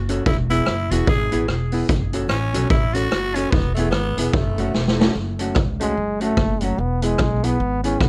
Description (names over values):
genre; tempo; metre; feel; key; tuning
ska; 147 BPM; 4/4; swing 59% on 8ths; F# minor; A4 = 440 Hz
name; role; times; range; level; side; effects
upright bass; bass; 0.0-8.1 s; E1 to C#2; -26 LUFS; equal; none
hollow-body jazz guitar; accompaniment; 0.1-8.1 s; A3 to A4; -27 LUFS; equal; tube saturation
street-band drum kit; drums; 0.1-8.1 s; hi-hat, kick drum, rim click, snare drum; -23 LUFS; equal; vintage 12-bit sampler grit
growling tenor saxophone; melody; 0.3-5.0 s; A3 to G#4; -28 LUFS; equal; analog delay
clear trombone; melody; 5.8-8.1 s; F#3 to C#4; -25 LUFS; equal; none
room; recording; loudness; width
light reverb; none; -20 LUFS; mono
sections
0.0-5.2 A section; 5.2-8.1 B section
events
drum fill 4.7-5.2; trombone solo 5.2-8.1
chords
0.3 E; 1.9 F#m; 3.5 E; 4.3 F#m; 6.8 E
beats
| 0.27 0.67 1.08 1.49 | 1.89 2.30 2.71 3.12 | 3.52 3.93 4.34 4.75 | 5.15 5.56 5.97 6.38 | 6.78 7.19 7.60 8.01